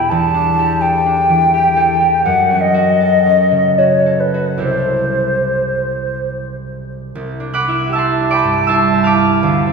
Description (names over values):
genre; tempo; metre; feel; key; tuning
classical, impressionist duo for flute and harp; 69-85 BPM; 3/4; rubato; C lydian; A4 = 440 Hz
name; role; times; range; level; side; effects
mellow hollow silver concert flute; melody; 0.0-9.7 s; B4 to A5; -14 LUFS; left 1 dB; none
concert harp; accompaniment; 0.0-9.7 s; C2 to F#6; -16 LUFS; right 2 dB; none
room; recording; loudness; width
wet church reverb, RT60 3.1 s; none; -12 LUFS; side -5 dB against mid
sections
0.0-7.2 A section; 7.2-9.7 A section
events
none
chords
0.1 A7sus4/E; 2.3 F#m6; 4.6 C6; 7.2 C69